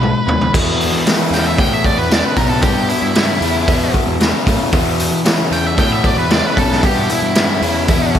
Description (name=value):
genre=blues rock power trio and southern rock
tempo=114 BPM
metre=4/4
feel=straight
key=E minor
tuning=A4 = 440 Hz
part: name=octave-fuzz lead guitar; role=melody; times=0.0-8.1 s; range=E4 to G5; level=-20 LUFS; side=right 2 dB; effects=distortion, slapback echo, analog delay
part: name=raw garage guitar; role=riff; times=0.0-8.2 s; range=E2 to G#3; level=-18 LUFS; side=left 3 dB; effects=overdrive, slapback echo
part: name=fuzz picked electric bass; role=bass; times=0.0-8.1 s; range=B1 to E3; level=-20 LUFS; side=equal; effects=overdrive
part: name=raw garage drum kit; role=drums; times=0.0-8.2 s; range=crash cymbal, hi-hat, kick drum, snare drum, toms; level=-16 LUFS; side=equal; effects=none
room=light reverb, small room ambience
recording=none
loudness=-12 LUFS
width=side -9 dB against mid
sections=0.5-8.2 A section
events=drum fill 0.0-0.5; lead electric guitar solo 0.5-8.2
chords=0.0 B; 0.5 Em